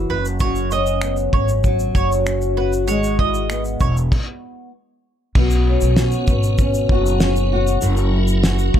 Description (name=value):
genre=acoustic pop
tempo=97 BPM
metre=4/4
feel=straight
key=unclear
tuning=A4 = 439 Hz
part: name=flamenco guitar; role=accompaniment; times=0.0-8.8 s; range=F#2 to F#4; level=-21 LUFS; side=left 2 dB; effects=double-tracked left and right, plate reverb
part: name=upright bass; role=bass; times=0.0-8.8 s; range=E1 to B1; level=-20 LUFS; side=equal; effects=none
part: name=mandolin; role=arpeggios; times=0.1-4.0 s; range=B4 to D#5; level=-25 LUFS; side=right 7 dB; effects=plate reverb
part: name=cloth-damped thuddy drum kit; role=drums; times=0.3-8.8 s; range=crash cymbal, finger snaps, kick drum, shaker, snare drum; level=-20 LUFS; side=equal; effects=none
part: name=tonewheel organ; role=sustained chords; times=5.4-8.8 s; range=F#3 to A#4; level=-27 LUFS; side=right 1 dB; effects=overdrive, chorus vibrato, slow rotary speaker, plate reverb
room=light reverb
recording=none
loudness=-16 LUFS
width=side -10 dB against mid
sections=0.0-5.4 A section; 5.4-8.8 B section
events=stop 4.1-5.4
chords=0.1 Bsus2/F#; 2.9 Eadd9; 5.4 Bsus2; 7.8 F#7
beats=| 0.41 1.03 1.65 2.27 | 2.88 3.50 4.12 4.73 | 5.35 5.97 6.58 7.20 | 7.82 8.44